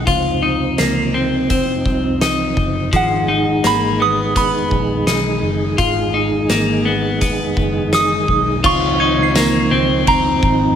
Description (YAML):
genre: dream pop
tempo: 84 BPM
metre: 4/4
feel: straight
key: unclear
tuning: A4 = 440 Hz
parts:
  - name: mellow tonewheel organ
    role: sustained chords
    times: 0.0-10.8 s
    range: C3 to Ab4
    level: -21 LUFS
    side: right 2 dB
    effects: chorus vibrato, slow rotary speaker
  - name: clean electric guitar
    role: arpeggios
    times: 0.0-10.8 s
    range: F3 to F4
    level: -19 LUFS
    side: left 3 dB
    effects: lush chorus, digital delay
  - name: vintage muted picked electric bass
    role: bass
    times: 0.0-10.8 s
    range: Gb1 to Db2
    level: -23 LUFS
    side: equal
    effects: none
  - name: oversized low-tuned drum kit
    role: drums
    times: 0.1-10.6 s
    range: crash cymbal, hi-hat, kick drum, ride cymbal, snare drum, tambourine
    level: -22 LUFS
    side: equal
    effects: none
  - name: soft synth bell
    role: texture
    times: 0.8-1.9, 9.0-10.3 s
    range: Ab6 to C7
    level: -26 LUFS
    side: right 4 dB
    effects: chorus, phaser, digital delay
  - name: soft synth bell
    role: melody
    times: 3.0-10.8 s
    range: Gb5 to Eb6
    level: -18 LUFS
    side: right 2 dB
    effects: chorus, digital delay
room: moderate plate reverb, RT60 2.2 s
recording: none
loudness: -14 LUFS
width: side -8 dB against mid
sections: 0.0-8.6 A section; 8.6-10.8 B section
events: none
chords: 0.1 Dbmaj9; 2.9 Abm7; 8.6 Dbmaj9